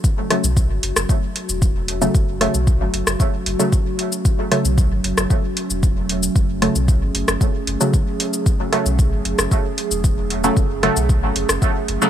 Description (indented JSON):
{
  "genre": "dub techno",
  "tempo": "114 BPM",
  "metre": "4/4",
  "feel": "straight",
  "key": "F# minor",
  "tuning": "A4 = 440 Hz",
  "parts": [
    { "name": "warbly tape-like pad", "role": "sustained chords", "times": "0.0-12.1 s", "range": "F#3 to G#4", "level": "-26 LUFS", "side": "right 2 dB", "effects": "chorus, built-in reverb, sidechain pumping" },
    { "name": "electronic kick drum", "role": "drums", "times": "0.0-11.7 s", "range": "none", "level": "-18 LUFS", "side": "equal", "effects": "overdrive" },
    { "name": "soft vintage rhythm box", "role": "drums", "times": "0.0-12.1 s", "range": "hi-hat, rim click, shaker", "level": "-22 LUFS", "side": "left 1 dB", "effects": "overdrive" },
    { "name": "filtered dub chord stab", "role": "stabs", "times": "0.3-12.1 s", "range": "C#3 to A3", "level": "-23 LUFS", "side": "equal", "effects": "chorus, phaser, sidechain pumping, dub echo" },
    { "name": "warm sub bass", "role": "bass", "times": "0.4-12.0 s", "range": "E1 to B1", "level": "-23 LUFS", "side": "equal", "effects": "sidechain pumping" }
  ],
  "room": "little or no reverb",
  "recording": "none",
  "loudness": "-16 LUFS",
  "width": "side -10 dB against mid",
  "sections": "0.0-12.1 A section",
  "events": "none",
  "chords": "0.0 F#m"
}